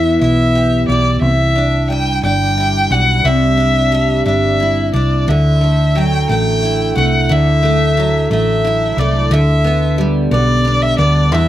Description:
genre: six-eight pop ballad.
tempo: 60 BPM (dotted quarters).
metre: 6/8.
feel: straight.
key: unclear.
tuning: A4 = 440 Hz.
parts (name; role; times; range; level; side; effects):
rich violin; melody; 0.0-11.5 s; D5 to G5; -17 LUFS; left 1 dB; none.
picked steel-string acoustic guitar; accompaniment; 0.0-11.5 s; C3 to G4; -17 LUFS; equal; double-tracked left and right.
hollow-body short-scale fingered electric bass; bass; 0.0-11.5 s; G1 to E2; -15 LUFS; equal; none.
room: little or no reverb.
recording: recorded outdoors, with no room sound.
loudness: -11 LUFS.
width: side -13 dB against mid.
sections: 0.0-11.5 A section.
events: none.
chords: 0.0 Em; 1.2 Cadd9; 5.3 Dadd9; 9.3 G/D.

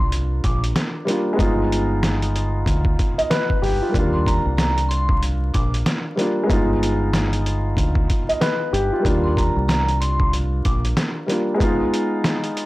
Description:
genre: hip hop, boom-bap hip-hop.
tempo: 94 BPM.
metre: 4/4.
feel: swing 60% on 16ths.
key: Eb major.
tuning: A4 = 440 Hz.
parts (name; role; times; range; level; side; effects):
vibraphone with medium hard mallets; melody; 0.0-10.8 s; Bb5 to D6; -26 LUFS; right 1 dB; high-pass filter, low-pass filter.
dark upright piano; accompaniment; 0.0-12.7 s; G3 to Eb5; -22 LUFS; equal; high-pass filter, low-pass filter.
deep dub fingered electric bass; bass; 0.0-10.9 s; G1 to Eb2; -22 LUFS; equal; transformer saturation.
trip hop sampler-style drum kit; drums; 0.1-12.7 s; hi-hat, kick drum, snare drum; -22 LUFS; equal; none.
room: studio ambience.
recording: dry, gritty hardware recording, transformer saturation, vinyl crackle.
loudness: -18 LUFS.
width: side -18 dB against mid.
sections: 0.0-12.7 A section.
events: none.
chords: 0.0 Ebmaj9 (rootless); 1.4 G7b9b13; 3.9 Ebmaj9; 6.5 G7b9b13; 9.1 Ebmaj9; 11.6 Abm6.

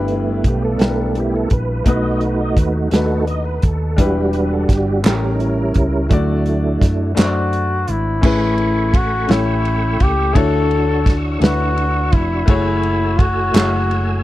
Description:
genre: slow gospel.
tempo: 56 BPM (dotted quarters).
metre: 6/8.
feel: straight.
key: A major from 8.2 s.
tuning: A4 = 440 Hz.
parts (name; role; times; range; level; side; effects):
clear grand piano; accompaniment; 0.0-14.2 s; G2 to D5; -23 LUFS; left 4 dB; none.
tonewheel organ; sustained chords; 0.0-14.2 s; F#3 to E6; -21 LUFS; right 2 dB; slow rotary speaker, chorus vibrato.
hollow-body short-scale fingered electric bass; bass; 0.0-14.2 s; E1 to F#2; -20 LUFS; equal; none.
warm soul drum kit; drums; 0.1-14.1 s; crash cymbal, hi-hat, kick drum, ride cymbal, snare drum; -15 LUFS; equal; none.
group handclap; percussion; 5.0-7.5, 13.6-13.9 s; none; -26 LUFS; right 3 dB; none.
warm duduk; melody; 7.2-14.2 s; E4 to A4; -20 LUFS; left 2 dB; none.
room: little or no reverb.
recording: dry, close 1970s-style studio recording.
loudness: -14 LUFS.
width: side -15 dB against mid.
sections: 0.0-8.2 A section; 8.2-14.2 B section.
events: tonewheel organ solo 0.0-8.2.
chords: 0.0 G6; 1.9 B7; 4.0 Em7; 5.1 A7b9; 6.1 D; 8.2 Amaj9; 9.3 A7; 10.4 Dmaj9; 12.5 F#m9.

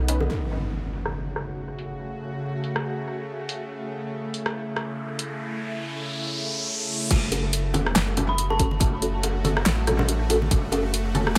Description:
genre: deep dubstep.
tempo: 141 BPM.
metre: 4/4.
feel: swing 56% on 16ths, half-time.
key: F# minor.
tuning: A4 = 443 Hz.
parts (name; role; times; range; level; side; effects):
bowed-like drone; sustained chords; 0.0-11.4 s; C#3 to F#4; -34 LUFS; equal; built-in reverb.
soft dub sub bass; bass; 0.0-0.3, 7.1-11.4 s; F#1 to B1; -29 LUFS; equal; tube saturation.
filtered dub chord stab; stabs; 0.1-0.2, 7.3-11.2 s; C#4 to B4; -31 LUFS; equal; phaser, ensemble chorus, dub echo.
deep house drum kit; drums; 0.1-11.4 s; crash cymbal, handclaps, hi-hat, rim click, snare drum; -28 LUFS; equal; low-pass filter on hats, low-pass filter on snare, low-pass filter on cymbals, low-pass filter on room, analog delay.
bongos and congas; percussion; 0.2-0.3, 7.1-11.2 s; none; -31 LUFS; equal; analog delay.
impact and riser; sound effects; 0.3-7.1 s; none; -34 LUFS; equal; none.
electronic kick drum; drums; 7.1-10.6 s; none; -26 LUFS; equal; none.
dark detuned synth bell; melody; 8.3-8.9 s; A5 to B5; -34 LUFS; equal; chorus, dub echo.
room: light reverb.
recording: echo-heavy mix.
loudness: -26 LUFS.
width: mono.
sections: 0.3-7.1 A section; 7.1-11.4 B section.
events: impact 0.3-2.0; filter sweep on drum 0.3-7.1; filter sweep on synth drone 0.3-7.1; riser 4.8-7.1; drop 7.1-11.4.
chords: 0.3 F#m.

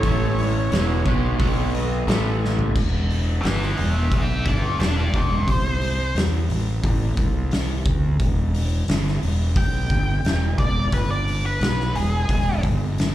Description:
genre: blues rock power trio and southern rock.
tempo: 88 BPM.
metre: 4/4.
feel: straight.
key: unclear.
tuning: A4 = 435 Hz.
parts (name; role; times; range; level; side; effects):
octave-fuzz lead guitar; melody; 0.0-12.6 s; G#4 to G5; -27 LUFS; equal; wah, distortion, slapback echo, tape echo.
overdriven tonewheel organ; sustained chords; 0.0-2.7 s; A3 to G#5; -33 LUFS; right 4 dB; slow rotary speaker, chorus vibrato.
crunchy overdriven guitar; riff; 0.0-2.8 s; E2 to B3; -24 LUFS; equal; slapback echo.
fuzz fingered electric bass; bass; 0.0-13.1 s; E1 to E2; -22 LUFS; equal; overdrive.
oversized low-tuned drum kit; drums; 0.0-13.1 s; crash cymbal, hi-hat, kick drum, snare drum, toms; -24 LUFS; equal; none.
room: little or no reverb.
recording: live gig heard through the venue's PA, club reverb.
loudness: -19 LUFS.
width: side -13 dB against mid.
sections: 0.0-2.8 A section; 2.8-13.1 B section.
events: tonewheel organ fill 1.7-2.8; drum fill 2.4-2.8; lead electric guitar solo 2.8-13.1.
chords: 0.0 A5; 0.7 E7; 1.4 B7; 2.1 A5; 2.8 E; 5.5 N.C.; 6.2 A5; 7.2 N.C.; 8.2 E5; 10.9 G5; 11.6 E; 12.6 N.C..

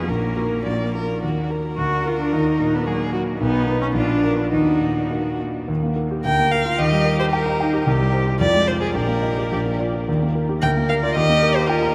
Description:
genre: quick classical-period movement for piano trio.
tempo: 101-114 BPM.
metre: 2/4.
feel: rubato.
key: Eb minor, Eb major from 5.7 s.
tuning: A4 = 438 Hz.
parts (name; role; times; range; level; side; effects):
warm violin; melody; 0.0-11.9 s; D#4 to G5; -26 LUFS; equal; none.
rich cello; second line; 0.0-11.9 s; Bb3 to Bb4; -26 LUFS; equal; none.
warm concert grand piano; accompaniment; 0.0-11.9 s; Bb1 to Bb5; -24 LUFS; equal; none.
room: wet huge ambient reverb, RT60 7.3 s.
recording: in a vast, echoing space.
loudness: -20 LUFS.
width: mono.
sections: 0.0-5.7 A section; 5.7-11.9 A section.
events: none.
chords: 0.1 Gb/Bb; 0.7 Bb; 1.2 Ebm; 1.8 Bb/D; 2.3 Ebm; 3.4 B; 3.9 Bb; 4.5 Ebm; 5.7 Eb; 6.3 Bb/D; 6.8 Eb; 7.9 C5; 8.4 Fm; 9.0 Eb/Bb; 9.5 Bb; 10.1 Eb; 10.6 Bb/D; 11.2 Eb.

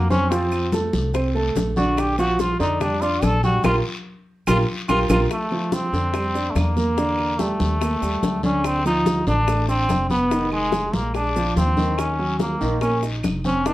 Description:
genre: Afro-Cuban jazz.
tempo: 144 BPM.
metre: 4/4.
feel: straight.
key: Bb major.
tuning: A4 = 440 Hz.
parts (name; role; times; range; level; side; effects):
trombone with metal mute; melody; 0.0-13.7 s; Ab3 to A4; -23 LUFS; equal; slapback echo.
warm grand piano; accompaniment; 0.0-13.7 s; D3 to D6; -24 LUFS; right 2 dB; none.
upright bass; bass; 0.0-13.7 s; F1 to F2; -24 LUFS; equal; none.
bongos; percussion; 0.1-13.7 s; none; -30 LUFS; left 6 dB; none.
congas; percussion; 0.1-13.7 s; none; -27 LUFS; equal; none.
guiro; percussion; 0.1-13.7 s; none; -38 LUFS; left 4 dB; none.
maracas; percussion; 0.1-13.7 s; none; -42 LUFS; right 5 dB; none.
claves; percussion; 0.5-13.4 s; none; -36 LUFS; right 3 dB; none.
room: moderate club reverb, RT60 0.7 s.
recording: worn, warbling old tape, cassette tape, warbly pitch drift.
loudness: -19 LUFS.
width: side -16 dB against mid.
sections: 0.0-5.3 A section; 5.3-13.7 B section.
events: trombone solo 0.0-5.3; band accent 3.6-5.3.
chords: 0.3 F; 2.0 Bb6; 5.3 Bb69; 7.0 Em7b5; 7.8 Eb; 8.6 Dm7; 10.3 Fm7b5; 11.2 Bb7; 12.0 Ebm7.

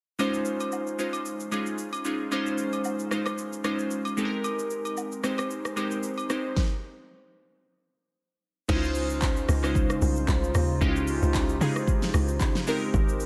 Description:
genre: amapiano.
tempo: 113 BPM.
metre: 4/4.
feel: swing 55% on 16ths.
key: Db lydian.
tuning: A4 = 440 Hz.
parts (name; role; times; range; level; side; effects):
glassy digital keys; accompaniment; 0.2-13.3 s; Ab3 to C5; -31 LUFS; equal; chorus.
deep house drum kit; drums; 0.2-13.3 s; crash cymbal, handclaps, hi-hat, kick drum, rim click, shaker, snare drum; -32 LUFS; equal; none.
agogo bells and woodblock; percussion; 0.2-6.3 s; none; -39 LUFS; equal; none.
hollow soft pad; sustained chords; 8.7-13.3 s; Db3 to C5; -35 LUFS; equal; chorus.
tight log drum bass; bass; 8.7-13.3 s; Ab1 to Db3; -29 LUFS; equal; none.
room: light reverb.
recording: none.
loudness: -27 LUFS.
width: mono.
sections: 0.2-8.7 A section; 8.7-13.3 B section.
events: stop 6.6-8.7; drop 8.7-13.3.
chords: 0.2 Dbmaj9; 4.2 Abmaj9; 8.7 Dbmaj9; 12.7 Abmaj9.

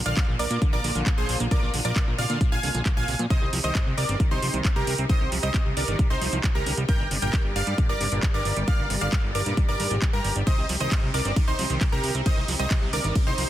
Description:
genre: uplifting trance.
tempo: 134 BPM.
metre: 4/4.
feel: straight.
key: C minor.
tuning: A4 = 445 Hz.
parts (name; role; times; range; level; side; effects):
clear symphonic string section; sustained chords; 0.0-13.5 s; C3 to D5; -35 LUFS; left 1 dB; sidechain pumping.
fat analog bass; bass; 0.0-13.5 s; G1 to Bb2; -28 LUFS; equal; sidechain pumping.
supersaw stab; melody; 0.1-13.5 s; Eb4 to Ab5; -30 LUFS; right 1 dB; sidechain pumping, ping-pong delay.
plucky unison lead; second line; 0.1-13.5 s; Bb5 to Ab6; -34 LUFS; equal; sidechain pumping, ping-pong delay.
liquid acid bass; arpeggios; 0.1-13.4 s; G1 to C4; -33 LUFS; right 3 dB; chorus, sidechain pumping, ping-pong delay.
house drum kit; drums; 0.1-13.5 s; handclaps, hi-hat, ride cymbal; -31 LUFS; right 2 dB; none.
electronic kick drum; drums; 0.2-13.2 s; none; -23 LUFS; equal; none.
room: little or no reverb.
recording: dense, heavily limited modern master.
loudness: -22 LUFS.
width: side -13 dB against mid.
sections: 0.0-13.5 A section.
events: none.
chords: 0.0 Bb; 3.3 Cm; 6.9 Gm; 10.5 Cm.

